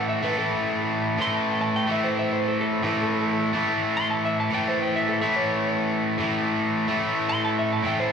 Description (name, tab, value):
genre	rock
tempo	144 BPM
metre	4/4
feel	swing 68% on 8ths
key	unclear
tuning	A4 = 437 Hz
part	lightly driven lead guitar	melody	0.0-8.1 s	A4 to C6	-28 LUFS	right 1 dB	slapback echo, digital delay
part	overdriven electric guitar	riff	0.0-8.1 s	A2 to A3	-22 LUFS	equal	slapback echo
room	moderate club reverb, RT60 0.6 s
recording	live gig heard through the venue's PA, recital hall reverb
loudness	-22 LUFS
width	side -6 dB against mid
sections	0.0-8.1 A section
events	lead electric guitar solo 0.0-8.1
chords	0.0 A5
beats	0.35 0.77 | 1.19 1.60 2.02 2.44 | 2.85 3.27 3.68 4.10 | 4.52 4.93 5.35 5.77 | 6.18 6.60 7.02 7.43 | 7.85